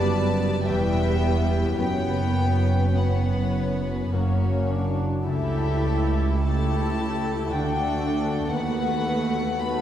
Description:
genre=classical, slow romantic movement for symphony orchestra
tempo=49-59 BPM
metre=3/4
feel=rubato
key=unclear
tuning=A4 = 440 Hz
part: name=warm symphonic violin section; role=melody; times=0.0-9.8 s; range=E5 to B5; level=-32 LUFS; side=left 4 dB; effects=none
part: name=warm symphonic violin section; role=second line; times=0.0-9.8 s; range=F#4 to E5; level=-31 LUFS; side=left 3 dB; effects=none
part: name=dark symphonic viola section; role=accompaniment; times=0.0-9.8 s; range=G3 to E4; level=-28 LUFS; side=right 1 dB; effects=none
part: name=concert harp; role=arpeggios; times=0.0-9.8 s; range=E2 to D5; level=-30 LUFS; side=left 2 dB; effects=none
part: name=warm symphonic cello section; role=bass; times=0.0-9.8 s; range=C#2 to F#2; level=-28 LUFS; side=right 1 dB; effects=none
part: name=warm symphonic double bass section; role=bass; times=0.0-9.8 s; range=E1 to D#2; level=-27 LUFS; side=right 2 dB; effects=none
room=wet scoring stage reverb, RT60 1.9 s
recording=heard from further back in the room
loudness=-21 LUFS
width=side -10 dB against mid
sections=0.0-9.8 A section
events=none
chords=0.0 G; 0.7 Em; 1.8 F#sus4; 4.1 F#; 5.3 A7/C#; 7.5 D; 8.5 B7/D#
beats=0.66 | 1.78 2.94 4.13 | 5.26 6.44 7.50 | 8.52 9.62

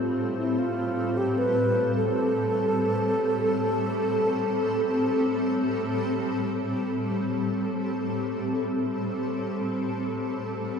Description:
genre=ambient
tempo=free time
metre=none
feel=none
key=A minor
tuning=A4 = 439 Hz
part: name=wooden-headed alto flute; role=melody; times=0.0-5.8 s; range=E4 to B4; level=-27 LUFS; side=right 1 dB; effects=ping-pong delay
part: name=granular cloud pad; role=sustained chords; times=0.0-10.8 s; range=A2 to A4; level=-26 LUFS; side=left 1 dB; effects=built-in reverb
room=wet huge ambient reverb, RT60 8.1 s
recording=lossy compression artefacts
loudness=-24 LUFS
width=side -6 dB against mid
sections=0.0-6.7 A section; 6.7-10.8 B section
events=filter sweep on ambient pad 0.0-6.7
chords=0.0 C5/A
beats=free time

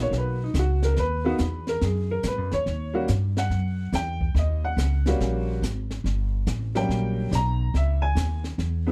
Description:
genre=jazz piano trio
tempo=142 BPM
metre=4/4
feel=swing 66% on 8ths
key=unclear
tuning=A4 = 440 Hz
part: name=clear upright piano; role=melody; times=0.0-8.9 s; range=F#3 to A#5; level=-30 LUFS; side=equal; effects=none
part: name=upright bass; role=bass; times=0.0-8.9 s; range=G1 to G#2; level=-27 LUFS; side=equal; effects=none
part: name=jazz brush drum kit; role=drums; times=0.1-8.9 s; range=brushed snare drum, hi-hat, kick drum, snare drum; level=-36 LUFS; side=equal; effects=none
room=little or no reverb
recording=dark, warm production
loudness=-25 LUFS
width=mono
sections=0.0-8.9 A section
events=upright piano solo 0.0-8.9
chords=0.0 G#m9 (rootless); 2.7 D#7#9; 7.7 C#madd9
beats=0.13 0.56 | 0.98 1.40 1.82 2.25 | 2.67 3.09 3.51 3.94 | 4.36 4.78 5.20 5.63 | 6.05 6.47 6.89 7.32 | 7.74 8.16 8.58

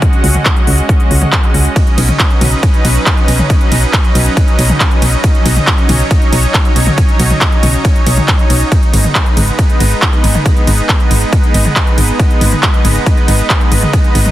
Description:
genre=uplifting trance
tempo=138 BPM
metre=4/4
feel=straight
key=unclear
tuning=A4 = 440 Hz
part: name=supersaw pad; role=sustained chords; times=0.0-14.3 s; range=F#3 to Gb5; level=-16 LUFS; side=right 1 dB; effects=sidechain pumping
part: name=big-room dance drum kit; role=drums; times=0.0-14.3 s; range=handclaps, hi-hat, ride cymbal, toms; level=-16 LUFS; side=equal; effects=overdrive, small room ambience
part: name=electronic kick drum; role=drums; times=0.0-14.0 s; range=none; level=-12 LUFS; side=equal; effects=overdrive, small room ambience
part: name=solid FM bass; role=bass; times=0.2-14.3 s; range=Ab1 to Db2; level=-12 LUFS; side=equal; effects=tube saturation, sidechain pumping
room=digital ambience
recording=dense, heavily limited modern master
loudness=-8 LUFS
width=side -14 dB against mid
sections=0.0-14.3 A section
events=none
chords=0.0 Dbsus4; 1.8 Badd9; 8.7 Abm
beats=| 0.02 0.46 0.89 1.32 | 1.76 2.19 2.63 3.06 | 3.50 3.93 4.37 4.80 | 5.24 5.67 6.11 6.54 | 6.98 7.41 7.85 8.28 | 8.72 9.15 9.59 10.02 | 10.46 10.89 11.32 11.76 | 12.20 12.63 13.06 13.50 | 13.93

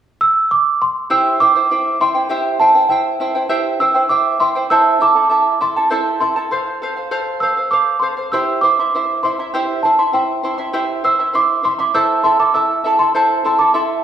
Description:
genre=andean folk, Andean ensemble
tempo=100 BPM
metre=3/4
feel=straight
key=unclear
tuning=A4 = 440 Hz
part: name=celesta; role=melody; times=0.2-14.0 s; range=G5 to E6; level=-15 LUFS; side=right 2 dB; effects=none
part: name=charango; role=accompaniment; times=1.1-14.0 s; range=E4 to C6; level=-17 LUFS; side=right 1 dB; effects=none
room=wet scoring stage reverb, RT60 1.5 s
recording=small room reverb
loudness=-13 LUFS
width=side -9 dB against mid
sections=0.0-1.1 A section; 1.1-14.0 B section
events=none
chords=0.0 N.C.; 1.1 C; 4.7 Am; 6.5 F; 8.3 C; 12.0 Am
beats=0.51 | 1.11 1.71 2.31 | 2.92 3.52 4.12 | 4.73 5.33 5.93 | 6.53 7.14 7.74 | 8.34 8.94 9.54 | 10.15 10.75 11.35 | 11.95 12.55 13.15 | 13.76

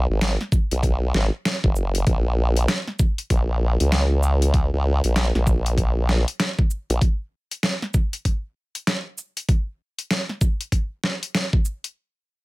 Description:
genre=glitch hop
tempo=97 BPM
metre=4/4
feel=swing 62% on 16ths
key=unclear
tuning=A4 = 441 Hz
part: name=formant-sweep wobble bass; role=bass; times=0.0-7.0 s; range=F#1 to C#2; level=-20 LUFS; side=equal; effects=chorus, tube saturation
part: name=dubstep drum kit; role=drums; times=0.2-11.9 s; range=hi-hat, shaker, snare drum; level=-24 LUFS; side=equal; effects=overdrive
part: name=electronic kick drum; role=drums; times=0.5-11.6 s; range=none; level=-20 LUFS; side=equal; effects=overdrive
room=little or no reverb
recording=none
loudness=-20 LUFS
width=side -22 dB against mid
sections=0.0-12.0 A section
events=drop 0.0-12.0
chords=none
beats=0.21 0.83 1.45 | 2.07 2.69 3.31 3.92 | 4.54 5.16 5.78 6.40 | 7.02 7.64 8.26 8.87 | 9.49 10.11 10.73 11.35

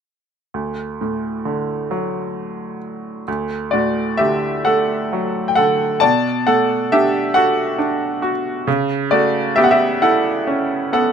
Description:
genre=classical, lyrical solo piano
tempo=44 BPM (dotted quarters)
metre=6/8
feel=rubato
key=D major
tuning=A4 = 440 Hz
part: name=bright upright piano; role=solo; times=0.5-11.1 s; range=D2 to A5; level=-16 LUFS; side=equal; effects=none
room=little or no reverb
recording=close, detailed microphones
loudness=-16 LUFS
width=side -7 dB against mid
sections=0.5-3.3 A section; 3.3-11.1 B section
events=none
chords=0.5 D; 6.0 Bm7; 8.7 Aadd9/C#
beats=| 0.54 1.92 | 3.28 4.66 | 6.03 7.35 | 8.68 10.02

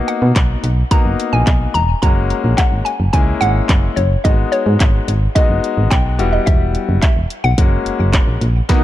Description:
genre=dance-pop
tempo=108 BPM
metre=4/4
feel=straight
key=unclear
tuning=A4 = 439 Hz
part: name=hollow square pluck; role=melody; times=0.0-8.4 s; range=C#5 to A#5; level=-21 LUFS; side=equal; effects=chorus, ping-pong delay
part: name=bright grand piano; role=accompaniment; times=0.0-8.8 s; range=G3 to F#4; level=-21 LUFS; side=left 6 dB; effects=sidechain pumping
part: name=house drum kit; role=drums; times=0.1-8.8 s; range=handclaps, hi-hat, kick drum, snare drum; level=-15 LUFS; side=equal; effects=none
part: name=solid FM bass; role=bass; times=0.2-8.6 s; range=E1 to B2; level=-16 LUFS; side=equal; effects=sidechain pumping
part: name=lush unison pad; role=sustained chords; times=8.7-8.8 s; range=B2 to F#5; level=-19 LUFS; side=right 3 dB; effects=chorus, sidechain pumping
part: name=mallet-like synth pluck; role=arpeggios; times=8.7-8.8 s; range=B3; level=-22 LUFS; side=right 10 dB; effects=chorus, sidechain pumping
part: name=riser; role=sound effects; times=8.7-8.8 s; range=none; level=barely audible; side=none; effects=none
room=digital ambience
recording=dark, warm production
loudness=-12 LUFS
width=side -14 dB against mid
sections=0.0-8.7 A section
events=none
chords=0.0 Bmaj7; 2.0 F#add9; 4.2 G#m7; 6.2 Emadd9; 7.6 F#add9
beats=0.36 0.92 1.47 | 2.03 2.58 3.14 3.69 | 4.25 4.80 5.36 5.92 | 6.47 7.03 7.58 8.14 | 8.69

